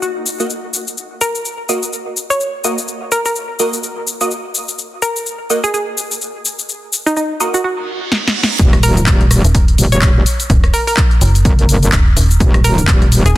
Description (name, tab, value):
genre	bass house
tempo	126 BPM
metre	4/4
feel	swing 58% on 16ths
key	Eb minor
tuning	A4 = 439 Hz
part	hollow square pluck	melody	0.0-13.3 s	Eb4 to Db5	-20 LUFS	equal	chorus, dub echo
part	house drum kit	drums	0.0-13.3 s	handclaps, hi-hat, rim click, shaker, snare drum	-18 LUFS	left 2 dB	small room ambience
part	band-passed chord stab	stabs	0.4-7.5 s	Bb3 to Eb5	-22 LUFS	right 1 dB	phaser, ensemble chorus, vintage 12-bit sampler grit, sidechain pumping, dub echo
part	reverse cymbal and impact	sound effects	7.8-10.5 s	none	-22 LUFS	right 2 dB	none
part	metallic wobble bass	bass	8.6-13.2 s	Eb1 to Gb1	-13 LUFS	equal	chorus, tube saturation, sidechain pumping
part	electronic kick drum	drums	8.6-13.0 s	none	-13 LUFS	equal	small room ambience
part	metallic FM bass	bass	9.4-13.4 s	Eb1 to Gb1	-12 LUFS	equal	sidechain pumping
room	light reverb, digital ambience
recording	dense, heavily limited modern master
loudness	-12 LUFS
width	side -16 dB against mid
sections	0.0-8.6 A section; 8.6-13.4 B section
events	reverse cymbal 7.8-8.6; drum fill 8.1-8.6; drop 8.6-13.4; impact 8.6-10.5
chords	0.0 Ebm